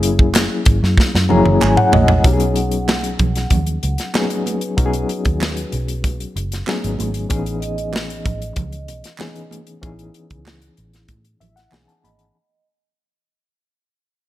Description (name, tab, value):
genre	lush 1970s-style soul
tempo	95 BPM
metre	4/4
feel	straight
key	B mixolydian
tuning	A4 = 440 Hz
part	reed electric piano	accompaniment	0.0-12.4 s	E3 to B5	-20 LUFS	left 3 dB	fast tremolo
part	vintage muted fingered electric bass	bass	0.0-12.3 s	F#1 to A2	-21 LUFS	equal	none
part	tight funk drum kit	drums	0.0-12.3 s	hi-hat, kick drum, snare drum, toms	-18 LUFS	equal	none
part	congas	percussion	0.3-12.2 s	none	-26 LUFS	right 6 dB	none
part	group handclap	percussion	0.3-11.9 s	none	-28 LUFS	right 6 dB	none
part	vibraphone with soft mallets	texture	1.3-12.6 s	E4 to F#5	-28 LUFS	right 1 dB	stereo widening
room	light reverb, studio ambience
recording	none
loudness	-15 LUFS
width	side -14 dB against mid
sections	0.0-2.2 A section; 2.2-12.4 B section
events	drum fill 1.0-2.2; reed electric piano fill 1.0-2.2, 11.1-12.4; fade-out 2.2-12.4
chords	0.0 F#9; 2.2 B69; 7.3 Amaj9#11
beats	0.35 0.98 1.61 | 2.24 2.88 3.51 4.14 | 4.77 5.40 6.04 6.67 | 7.30 7.93 8.56 9.20 | 9.83 10.46 11.09 11.72